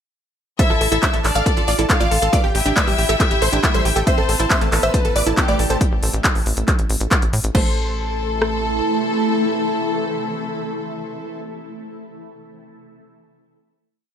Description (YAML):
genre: uplifting trance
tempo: 138 BPM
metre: 4/4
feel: straight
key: A minor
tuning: A4 = 440 Hz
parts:
  - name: wide unison pluck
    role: melody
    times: 0.6-11.4 s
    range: F4 to F5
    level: -23 LUFS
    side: equal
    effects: sidechain pumping, digital delay
  - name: clear studio violin section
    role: second line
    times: 0.6-11.4 s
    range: G3 to F5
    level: -24 LUFS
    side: left 2 dB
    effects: digital delay
  - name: supersaw stab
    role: second line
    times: 0.6-11.4 s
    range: G5 to F6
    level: -31 LUFS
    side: right 1 dB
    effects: sidechain pumping, digital delay
  - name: wide unison pluck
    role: arpeggios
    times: 0.6-7.8 s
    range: G3 to C5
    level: -26 LUFS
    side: right 2 dB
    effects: sidechain pumping, digital delay
  - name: techno drum kit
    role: drums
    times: 0.6-8.5 s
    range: kick drum, rim click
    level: -19 LUFS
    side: equal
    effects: none
  - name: techno drum kit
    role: drums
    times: 0.6-7.6 s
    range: crash cymbal, handclaps, hi-hat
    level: -22 LUFS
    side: equal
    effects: none
  - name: tight sequencer bass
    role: bass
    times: 0.7-8.8 s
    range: A1 to A2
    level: -23 LUFS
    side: equal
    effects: sidechain pumping
  - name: shimmering ambient pad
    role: sustained chords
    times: 4.8-11.4 s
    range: C3 to A4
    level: -25 LUFS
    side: equal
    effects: chorus, built-in reverb, phaser, sidechain pumping
room: light reverb, digital ambience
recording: none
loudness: -16 LUFS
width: side -8 dB against mid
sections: 0.6-7.5 drop; 7.5-11.0 final chord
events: drop 0.6-7.5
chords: 0.6 Dmadd9/A; 2.3 Gsus2/A; 4.1 Am; 5.8 N.C.; 7.5 Am